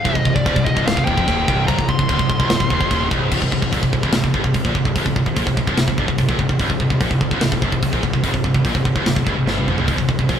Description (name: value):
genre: heavy metal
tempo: 146 BPM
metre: 4/4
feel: straight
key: C minor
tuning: A4 = 440 Hz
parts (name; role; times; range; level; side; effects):
- high-gain lead guitar; melody; 0.0-3.1 s; D5 to C6; -22 LUFS; left 1 dB; distortion
- crunchy overdriven guitar; riff; 0.0-3.3 s; C2 to F2; -25 LUFS; equal; none
- high-gain distorted guitar; riff; 0.0-10.4 s; C2 to Bb2; -22 LUFS; left 4 dB; distortion
- scooped high-gain guitar; riff; 0.0-10.4 s; C2 to Bb2; -23 LUFS; right 9 dB; distortion
- fuzz picked electric bass; bass; 0.1-10.4 s; C1 to Bb1; -25 LUFS; equal; overdrive
- tight metal drum kit; drums; 0.1-10.4 s; crash cymbal, hi-hat, kick drum, snare drum, toms; -20 LUFS; equal; none
room: moderate stone room reverb, RT60 1.4 s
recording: band playing live in one room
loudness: -16 LUFS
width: side -8 dB against mid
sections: 0.0-3.3 A section; 3.3-10.4 B section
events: drum fill 9.5-9.9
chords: 0.0 Cm; 3.3 C5